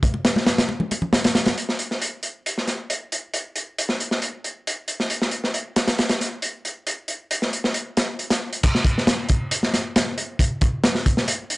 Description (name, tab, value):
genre	breakbeat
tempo	136 BPM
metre	4/4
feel	straight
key	none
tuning	none
part	crunchy breakbeat drum kit	drums	0.0-11.6 s	crash cymbal, hi-hat, kick drum, snare drum	-20 LUFS	equal	high-pass filter on kick, high-pass filter on hats, high-pass filter on cymbals, high-pass filter on snare, high-pass filter on room
part	congas	percussion	0.0-1.6 s	none	-27 LUFS	left 2 dB	none
room	light reverb, studio ambience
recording	dry, gritty hardware recording, transformer saturation, nothing above 10.9 kHz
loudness	-20 LUFS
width	side -21 dB against mid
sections	0.0-1.6 A section; 1.6-8.6 B section; 8.6-11.6 C section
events	drop 8.6-11.6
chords	none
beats	0.25 0.69 1.13 | 1.57 2.01 2.46 2.90 | 3.34 3.78 4.22 4.66 | 5.10 5.54 5.99 6.43 | 6.87 7.31 7.75 8.19 | 8.63 9.07 9.51 9.96 | 10.40 10.84 11.28